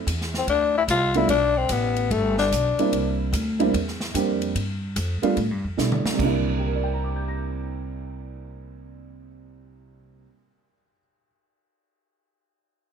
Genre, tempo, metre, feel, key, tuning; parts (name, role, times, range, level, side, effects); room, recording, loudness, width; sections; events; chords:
jazz, small-group swing and bop; 147 BPM; 4/4; swing 66% on 8ths; C mixolydian; A4 = 440 Hz
dark upright piano; accompaniment; 0.0-11.3 s; C3 to Bb6; -25 LUFS; right 5 dB
upright bass; bass; 0.0-10.2 s; G1 to B2; -27 LUFS; equal
swinging big-band drum kit; drums; 0.1-6.3 s; crash cymbal, hi-hat, kick drum, ride cymbal, snare drum, toms; -31 LUFS; equal
growling tenor saxophone; melody; 0.4-3.2 s; A3 to F4; -21 LUFS; left 6 dB; plate reverb
light reverb; -21 LUFS; side -7 dB against mid
0.0-6.2 A section; 6.2-9.5 B section
drum fill 5.8-6.2
0.0 Dm7; 1.3 G; 2.9 C7; 4.6 G7; 6.2 C7